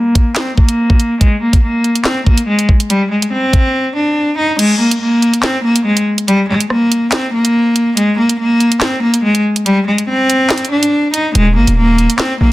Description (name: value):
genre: hip hop, drill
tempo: 142 BPM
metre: 4/4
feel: half-time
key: unclear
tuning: A4 = 441 Hz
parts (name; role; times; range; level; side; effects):
- rich cello; melody; 0.0-12.5 s; G3 to Eb4; -12 LUFS; equal; low-pass filter
- drill drum kit; drums; 0.2-12.3 s; crash cymbal, handclaps, hi-hat, kick drum, rim click, snare drum; -13 LUFS; equal; soft clipping on snare
- distorted 808-style bass; bass; 11.3-12.5 s; Eb1 to Bb1; -11 LUFS; equal; distortion
room: little or no reverb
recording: dense, heavily limited modern master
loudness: -11 LUFS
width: side -17 dB against mid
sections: 0.0-4.6 A section; 4.6-12.5 B section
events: filter sweep on cello 0.0-4.6; silent gap 3.7-4.6; kick muted 4.6-11.3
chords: 0.0 N.C.; 11.3 Eb5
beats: 0.36 0.79 | 1.21 1.63 2.06 2.48 | 2.90 3.32 3.75 4.17 | 4.59 5.01 5.43 5.86 | 6.28 6.70 7.12 7.55 | 7.97 8.39 8.81 9.24 | 9.66 10.08 10.51 10.93 | 11.35 11.77 12.20